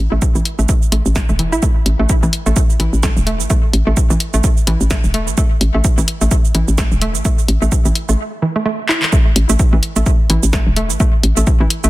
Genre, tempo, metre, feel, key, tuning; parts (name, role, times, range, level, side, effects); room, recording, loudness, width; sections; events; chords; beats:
minimal techno; 128 BPM; 4/4; swing 57% on 16ths; A4 = 439 Hz
hollow knocking FM bass; bass; 0.0-11.9 s; E1 to A1; -15 LUFS; equal; sidechain pumping
hollow square pluck; riff; 0.1-11.9 s; E3 to E4; -21 LUFS; right 1 dB; chorus, sidechain pumping, digital delay
electronic kick drum; drums; 0.2-11.6 s; -14 LUFS; equal
punchy analog drum machine; drums; 0.2-11.9 s; handclaps, hi-hat, shaker, snare drum; -20 LUFS; right 2 dB
little or no reverb; dense, heavily limited modern master; -12 LUFS; side -18 dB against mid
0.0-9.1 A section; 9.1-11.9 B section
break 8.2-9.1; drum fill 8.9; drop 9.1-11.9
0.0 A5
0.22 0.69 1.16 | 1.63 2.10 2.56 3.03 | 3.50 3.97 4.44 4.91 | 5.38 5.84 6.31 6.78 | 7.25 7.72 8.19 8.66 | 9.13 9.60 10.06 10.53 | 11.00 11.47